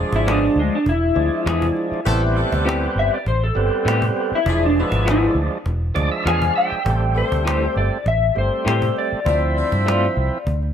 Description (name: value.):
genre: straight-eighth soul blues.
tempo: 100 BPM.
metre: 4/4.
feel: straight.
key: A minor.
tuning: A4 = 441 Hz.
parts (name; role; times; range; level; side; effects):
overdriven tonewheel organ; accompaniment; 0.0-10.4 s; F3 to F5; -24 LUFS; right 3 dB; slow rotary speaker.
warm horn section; sustained chords; 0.0-10.2 s; F3 to C5; -31 LUFS; left 2 dB; none.
vintage muted fingered electric bass; bass; 0.0-10.7 s; E1 to A2; -21 LUFS; equal; none.
cajon; drums; 0.1-10.7 s; none; -28 LUFS; equal; none.
electric guitar through a small old amp; melody; 0.2-10.7 s; G#3 to G#5; -21 LUFS; left 2 dB; analog chorus.
electric guitar through a small old amp; stabs; 0.3-10.1 s; E3 to G#4; -28 LUFS; left 4 dB; tremolo, analog delay.
room: light reverb.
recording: none.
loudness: -17 LUFS.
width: side -8 dB against mid.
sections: 0.0-6.9 A section; 6.9-10.7 B section.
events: clean electric guitar solo 0.0-6.9; tonewheel organ fill 5.7-6.9.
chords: 0.0 E7b9; 2.1 Am7; 4.5 E7b9; 6.9 Am7; 9.3 Dm7.